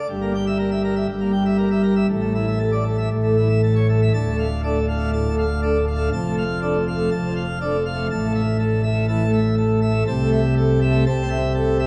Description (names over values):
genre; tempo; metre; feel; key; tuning
classical, organ toccata; 121 BPM; 4/4; straight; D minor; A4 = 440 Hz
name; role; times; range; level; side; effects
pipe organ, plenum; solo; 0.0-11.9 s; D1 to A5; -20 LUFS; equal; none
room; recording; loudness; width
wet cathedral reverb, RT60 5.9 s; in a vast, echoing space; -20 LUFS; mono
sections
0.0-4.1 A section; 4.1-11.9 B section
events
none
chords
0.1 Edim/G; 2.1 Asus4; 3.1 A; 4.1 Dm; 6.1 Dm/F; 8.1 A5; 10.1 Am/C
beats
| 0.08 0.57 1.07 1.57 | 2.08 2.59 3.11 3.62 | 4.13 4.63 5.12 5.62 | 6.12 6.61 7.11 7.61 | 8.10 8.59 9.08 9.57 | 10.07 10.57 11.06 11.55